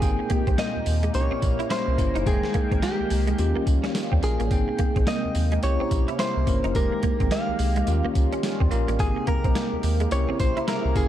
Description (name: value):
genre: R&B, new jack swing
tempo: 107 BPM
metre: 4/4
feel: swing 61% on 16ths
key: F minor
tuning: A4 = 441 Hz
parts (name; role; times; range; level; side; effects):
- direct-recorded clean electric guitar; melody; 0.0-11.1 s; G4 to F5; -29 LUFS; equal; none
- bell-like tine electric piano; accompaniment; 0.0-11.1 s; Ab3 to G5; -30 LUFS; left 1 dB; medium stereo tremolo
- sweeping resonant pad; sustained chords; 0.0-11.1 s; Bb2 to G5; -32 LUFS; equal; chorus
- round analog bass; bass; 0.0-11.1 s; F1 to Eb2; -25 LUFS; equal; none
- boom bap sampler-style drum kit; drums; 0.0-11.1 s; hi-hat, kick drum, snare drum, tambourine; -26 LUFS; equal; none
- direct-recorded clean electric guitar; riff; 0.2-11.0 s; Ab3 to E4; -33 LUFS; right 4 dB; ensemble chorus
room: light reverb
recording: dark, warm production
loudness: -21 LUFS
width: side -12 dB against mid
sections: 0.0-11.1 A section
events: none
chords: 0.0 Abmaj9; 1.1 C7b9; 2.3 Fm11; 3.4 Eb9; 4.5 Abmaj9; 5.6 C7b9; 6.8 Fm11; 7.9 Eb9; 9.0 Abmaj9; 10.1 C7b9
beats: | 0.02 0.58 1.14 1.70 | 2.26 2.83 3.39 3.95 | 4.51 5.07 5.63 6.19 | 6.75 7.31 7.87 8.43 | 8.99 9.55 10.12 10.68